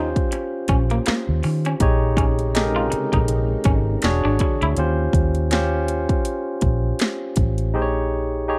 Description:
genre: R&B, neo-soul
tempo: 81 BPM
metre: 4/4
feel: swing 58% on 16ths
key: unclear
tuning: A4 = 440 Hz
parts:
  - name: electric guitar through a small old amp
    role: second line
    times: 0.0-4.7 s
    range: Bb3 to F4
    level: -29 LUFS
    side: equal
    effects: none
  - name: barky tine electric piano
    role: accompaniment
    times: 0.0-8.6 s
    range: Db4 to Db5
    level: -26 LUFS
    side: equal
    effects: none
  - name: vintage muted fingered electric bass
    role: bass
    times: 0.0-8.6 s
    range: E1 to Eb3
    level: -24 LUFS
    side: equal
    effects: none
  - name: house drum kit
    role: drums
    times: 0.2-7.7 s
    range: handclaps, hi-hat, kick drum, snare drum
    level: -24 LUFS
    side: equal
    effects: overdrive
  - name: soft string machine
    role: sustained chords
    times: 1.8-4.8 s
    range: C3 to F#4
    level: -34 LUFS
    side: equal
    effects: phaser, ensemble chorus
room: digital ambience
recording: dark, warm production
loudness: -21 LUFS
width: mono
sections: 0.0-8.6 A section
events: none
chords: 0.0 Eb7; 1.8 Bbm11; 4.0 E9; 4.8 Eb7; 7.7 Bbm7

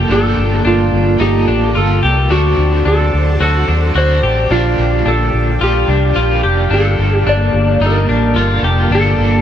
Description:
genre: dream pop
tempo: 109 BPM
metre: 4/4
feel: straight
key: G minor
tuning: A4 = 440 Hz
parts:
  - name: overdriven electric guitar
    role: accompaniment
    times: 0.0-9.4 s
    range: G2 to A4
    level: -22 LUFS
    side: right 2 dB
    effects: tremolo, ensemble chorus
  - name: string machine, full ensemble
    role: sustained chords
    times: 0.0-9.4 s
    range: Bb3 to A5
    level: -20 LUFS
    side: right 2 dB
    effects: ensemble chorus
  - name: clean electric guitar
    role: arpeggios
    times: 0.0-9.4 s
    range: D4 to G4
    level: -18 LUFS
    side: left 3 dB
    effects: lush chorus, analog delay
  - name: vintage muted fingered electric bass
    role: bass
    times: 0.0-9.4 s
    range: F1 to Eb2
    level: -15 LUFS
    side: equal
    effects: none
  - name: electric slide guitar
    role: melody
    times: 0.1-9.4 s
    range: F4 to D5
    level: -17 LUFS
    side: equal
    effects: analog delay
room: light reverb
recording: echo-heavy mix, nothing above 10.5 kHz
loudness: -11 LUFS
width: side -9 dB against mid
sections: 0.0-9.4 A section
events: none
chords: 0.0 Gm9; 2.3 D7; 4.5 Bb6; 6.7 Gm9

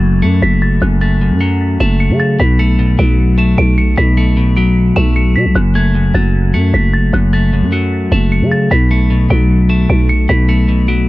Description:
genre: hip hop, trap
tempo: 152 BPM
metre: 4/4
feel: half-time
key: F# minor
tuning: A4 = 440 Hz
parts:
  - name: small celesta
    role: melody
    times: 0.0-11.1 s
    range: F#6 to E7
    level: -20 LUFS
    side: right 1 dB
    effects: digital delay
  - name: clean electric guitar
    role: accompaniment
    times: 0.0-11.1 s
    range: F#2 to A3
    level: -15 LUFS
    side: left 2 dB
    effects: none
  - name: growling 808-style bass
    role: bass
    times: 0.0-11.1 s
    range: F#1 to C#3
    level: -12 LUFS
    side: right 1 dB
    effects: none
room: small room ambience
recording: dark, warm production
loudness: -10 LUFS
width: side -18 dB against mid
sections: 0.0-11.1 A section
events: none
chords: 0.0 F#m; 2.4 Bm7; 5.6 F#m; 8.7 Bm7

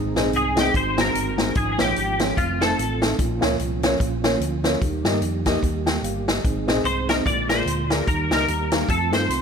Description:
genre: uptempo gospel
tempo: 147 BPM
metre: 4/4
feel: swing 58% on 8ths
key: Ab major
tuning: A4 = 437 Hz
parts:
  - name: dark grand piano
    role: accompaniment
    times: 0.0-9.2 s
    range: Ab2 to Bb5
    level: -26 LUFS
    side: left 1 dB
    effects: none
  - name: mellow tonewheel organ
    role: sustained chords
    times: 0.0-9.4 s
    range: D3 to Ab4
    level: -29 LUFS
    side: right 6 dB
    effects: fast rotary speaker, chorus vibrato
  - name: hollow-body short-scale fingered electric bass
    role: bass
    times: 0.0-9.4 s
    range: F1 to G2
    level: -28 LUFS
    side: equal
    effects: none
  - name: swinging big-band drum kit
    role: drums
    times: 0.2-9.4 s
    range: hi-hat, kick drum, snare drum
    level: -24 LUFS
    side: equal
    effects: none
  - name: twelve-string electric guitar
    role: melody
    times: 0.4-3.0, 6.9-9.4 s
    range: F4 to D5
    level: -23 LUFS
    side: left 2 dB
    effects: ensemble chorus, slapback echo
room: light reverb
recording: none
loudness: -19 LUFS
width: side -6 dB against mid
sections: 0.0-9.4 A section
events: none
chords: 0.0 Ab; 0.7 Ab7; 1.6 Db/Ab; 2.4 F7; 3.2 Bbm; 4.8 Eb; 6.4 Ab; 7.3 Bb7; 8.1 Eb; 8.9 F7

